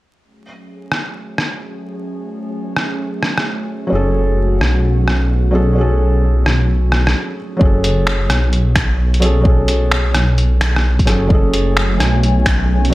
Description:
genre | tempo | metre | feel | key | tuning
future garage | 130 BPM | 4/4 | swing 66% on 16ths | unclear | A4 = 436 Hz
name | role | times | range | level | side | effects
airy breathy pad | sustained chords | 0.2-7.6, 11.3-12.9 s | F#3 to G#5 | -24 LUFS | right 1 dB | chorus, vintage 12-bit sampler grit, sidechain pumping
lo-fi sampler-style drum kit | drums | 0.9-12.9 s | finger snaps, hi-hat, rim click | -19 LUFS | equal | none
felt-muted upright piano | accompaniment | 3.9-12.9 s | F#3 to A4 | -20 LUFS | equal | sidechain pumping, analog delay
dark detuned saw bass | bass | 3.9-12.9 s | F#1 to B1 | -14 LUFS | equal | tube saturation, sidechain pumping
electronic kick drum | drums | 7.6-12.6 s | none | -14 LUFS | equal | none
room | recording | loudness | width
light reverb, digital ambience | vinyl crackle | -13 LUFS | side -18 dB against mid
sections
0.2-7.6 A section; 7.6-12.9 B section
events
fade-in on analog synth pad 0.2-7.6; break 7.2-7.6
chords
0.2 F#madd9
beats
| 0.23 0.69 1.15 1.61 | 2.07 2.54 3.00 3.46 | 3.92 4.38 4.84 5.30 | 5.77 6.23 6.69 7.15 | 7.61 8.07 8.54 9.00 | 9.46 9.92 10.38 10.84 | 11.30 11.77 12.23 12.69

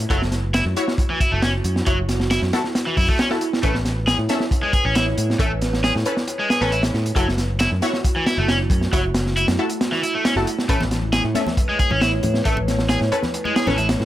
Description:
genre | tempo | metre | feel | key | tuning
breakbeat, breaks | 136 BPM | 4/4 | straight | F# minor | A4 = 437 Hz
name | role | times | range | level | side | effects
dark analog pad | sustained chords | 0.0-14.1 s | A3 to C#5 | -28 LUFS | right 1 dB | chorus, phaser, sidechain pumping
orchestra-hit-like synth stab | stabs | 0.0-14.1 s | C#4 to E5 | -26 LUFS | left 1 dB | built-in reverb, vintage 12-bit sampler grit, dub echo
picked electric bass | bass | 0.0-14.1 s | F#1 to A2 | -23 LUFS | equal | tube saturation
crunchy breakbeat drum kit | drums | 0.0-14.1 s | hi-hat, kick drum, snare drum | -22 LUFS | equal | none
overdriven semi-hollow guitar | riff | 0.1-13.9 s | E3 to G#4 | -23 LUFS | equal | tube saturation, dub echo
congas | percussion | 10.8-13.8 s | none | -31 LUFS | left 2 dB | none
room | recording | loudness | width
light reverb | none | -18 LUFS | side -13 dB against mid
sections
0.0-14.1 A section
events
kick drops out 9.8-10.7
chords
0.1 F#m7; 3.6 Aadd9; 7.2 F#m7; 10.7 Aadd9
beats
| 0.10 0.54 0.98 1.43 | 1.87 2.31 2.75 3.19 | 3.63 4.07 4.51 4.96 | 5.40 5.84 6.28 6.72 | 7.16 7.60 8.04 8.48 | 8.93 9.37 9.81 10.25 | 10.69 11.13 11.57 12.02 | 12.46 12.90 13.34 13.78

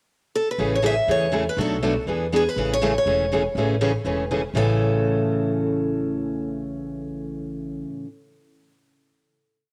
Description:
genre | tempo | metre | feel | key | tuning
acoustic string swing (jazz manouche) | 243 BPM | 4/4 | swing 57% on 8ths | A major | A4 = 440 Hz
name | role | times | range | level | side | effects
picked steel-string acoustic guitar | melody | 0.4-7.9 s | G#4 to E5 | -27 LUFS | equal | cassette tape
picked steel-string acoustic guitar | accompaniment | 0.6-8.1 s | A2 to G#4 | -26 LUFS | equal | cassette tape
upright bass | bass | 0.6-7.8 s | E1 to E2 | -31 LUFS | equal | none
room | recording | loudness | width
light reverb, studio reverb | home recording on cassette | -23 LUFS | mono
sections
0.0-0.6 pickup bar; 0.6-4.5 A section; 4.5-6.5 final chord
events
none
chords
0.0 N.C.; 0.6 Amaj7; 1.6 Bm7; 2.1 E7; 2.6 Amaj7; 4.5 A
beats
0.10 0.34 | 0.59 0.83 1.08 1.33 | 1.57 1.82 2.07 2.31 | 2.56 2.81 3.06 3.30 | 3.55 3.80 4.04 4.29 | 4.54 4.79 5.03 5.28 | 5.53 5.77 6.02 6.27

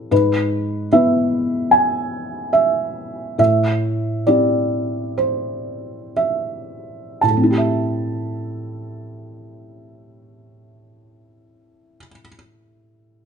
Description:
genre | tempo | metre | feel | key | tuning
classical | 55-78 BPM | 4/4 | rubato | A minor | A4 = 441 Hz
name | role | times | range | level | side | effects
felt-muted upright piano | accompaniment | 0.0-13.3 s | G#2 to A5 | -17 LUFS | right 1 dB | none
room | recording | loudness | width
moderate large studio reverb, RT60 1.1 s | nothing above 10.4 kHz | -17 LUFS | side -6 dB against mid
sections
0.0-7.2 A section; 7.2-11.4 B section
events
slowing down 0.0-7.2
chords
0.1 E/G#; 3.4 Am7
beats
| 0.11 0.92 1.72 2.53 | 3.38 4.26 5.17 6.16 | 7.22 8.27 9.31 10.35

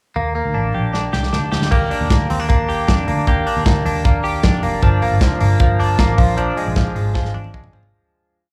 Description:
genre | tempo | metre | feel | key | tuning
jangly indie pop | 154 BPM | 4/4 | straight | unclear | A4 = 438 Hz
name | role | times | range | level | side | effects
direct-recorded clean electric guitar | arpeggios | 0.2-8.5 s | F3 to G4 | -22 LUFS | equal | analog chorus, slapback echo, plate reverb
vintage muted picked electric bass | bass | 0.2-7.9 s | F1 to F2 | -22 LUFS | equal | none
modern studio drum kit | drums | 0.9-7.9 s | crash cymbal, hi-hat, kick drum, snare drum, toms | -20 LUFS | equal | none
room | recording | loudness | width
little or no reverb | live gig heard through the venue's PA, club reverb | -17 LUFS | mono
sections
0.2-1.7 intro; 1.7-7.9 pre-chorus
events
drum fill 0.9-1.7, 7.2-7.9; fade-out 6.4-7.9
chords
0.2 Ebmaj7; 4.8 Gm7; 6.2 Bb7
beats
| 0.16 0.55 0.94 1.33 | 1.72 2.10 2.49 2.88 | 3.27 3.66 4.05 4.44 | 4.83 5.21 5.60 5.99 | 6.38 6.77 7.16 7.54

